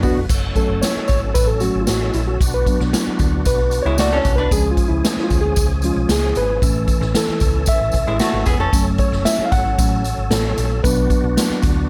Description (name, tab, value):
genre	uptempo 1960s-style soul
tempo	114 BPM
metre	4/4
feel	straight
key	F# minor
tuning	A4 = 440 Hz
part	mellow reed electric piano	accompaniment	0.0-11.9 s	E3 to F#5	-23 LUFS	equal	none
part	bright tonewheel organ	sustained chords	0.0-11.9 s	D3 to A4	-31 LUFS	equal	fast rotary speaker, chorus vibrato
part	archtop guitar, miked and amplified	riff	0.0-0.3, 3.9-4.6, 8.1-8.9 s	F#3 to B4	-24 LUFS	equal	none
part	hollow-body short-scale fingered electric bass	bass	0.0-11.9 s	E1 to D2	-24 LUFS	equal	none
part	swinging big-band drum kit	drums	0.0-11.8 s	crash cymbal, hi-hat, kick drum, snare drum	-22 LUFS	equal	none
part	tambourine	percussion	0.0-11.8 s	none	-33 LUFS	equal	none
room	little or no reverb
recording	none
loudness	-18 LUFS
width	mono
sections	0.3-11.9 A section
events	reed electric piano solo 0.3-11.9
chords	0.3 F#m; 2.4 Bm; 4.5 C#; 6.6 A; 8.7 F#m; 10.8 Bm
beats	| 0.30 0.83 1.35 1.88 | 2.41 2.93 3.46 3.99 | 4.51 5.04 5.57 6.09 | 6.62 7.15 7.68 8.20 | 8.73 9.26 9.79 10.31 | 10.84 11.37